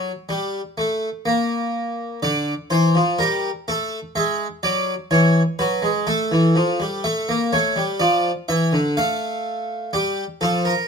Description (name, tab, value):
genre	classical, baroque-style two-part invention for harpsichord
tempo	62 BPM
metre	4/4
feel	straight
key	unclear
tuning	A4 = 440 Hz
part	harpsichord	solo	0.0-10.9 s	D3 to F5	-18 LUFS	equal	none
room	light reverb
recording	close, detailed microphones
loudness	-18 LUFS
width	side -6 dB against mid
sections	0.0-10.9 A section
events	none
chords	0.0 N.C.; 2.2 Dm; 4.2 E7; 6.1 A; 8.0 Dm; 9.9 Gm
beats	0.30 1.27 | 2.23 3.19 4.16 5.12 | 6.08 7.03 8.00 8.97 | 9.93